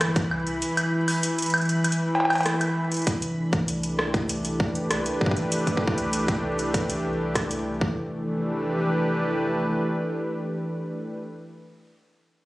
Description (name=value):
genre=IDM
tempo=98 BPM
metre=4/4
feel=straight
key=F lydian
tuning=A4 = 440 Hz
part: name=warm analog pad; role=sustained chords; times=0.0-11.2 s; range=E3 to B4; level=-25 LUFS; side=equal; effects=chorus
part: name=warm sub bass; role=bass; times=0.0-9.8 s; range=F1 to C2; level=-38 LUFS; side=equal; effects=none
part: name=booming analog drum machine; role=drums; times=0.0-7.6 s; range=cowbell, hi-hat, rim click, woodblock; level=-27 LUFS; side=equal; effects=overdrive, ping-pong delay
part: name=bubbling stepped-filter texture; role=texture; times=0.0-3.1 s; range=B5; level=-36 LUFS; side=right 1 dB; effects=chorus, built-in reverb, sidechain pumping
part: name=electronic kick drum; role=drums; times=0.2-7.9 s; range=none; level=-24 LUFS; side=equal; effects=overdrive
room=moderate lush hall reverb, RT60 2.3 s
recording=recorded on a phone in the room, studio reverb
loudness=-23 LUFS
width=side -18 dB against mid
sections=0.0-3.1 A section; 3.1-8.0 B section; 8.0-10.4 C section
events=none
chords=0.0 Cmaj7 (rootless); 3.1 Fmaj7